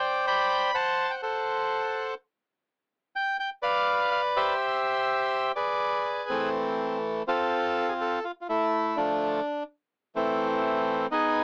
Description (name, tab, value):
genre	tango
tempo	125 BPM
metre	4/4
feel	rubato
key	C major, A harmonic minor from 6.5 s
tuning	A4 = 441 Hz
part	bandoneon	solo	0.0-11.4 s	E3 to B5	-27 LUFS	equal	none
room	light reverb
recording	AM radio sound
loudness	-27 LUFS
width	mono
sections	0.0-6.5 A section; 6.5-11.4 B section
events	none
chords	0.0 Csus2; 0.7 Am6; 2.7 N.C.; 3.6 G7; 4.6 C; 5.5 E7; 6.5 Am; 7.5 F5; 8.5 Dm; 9.4 Am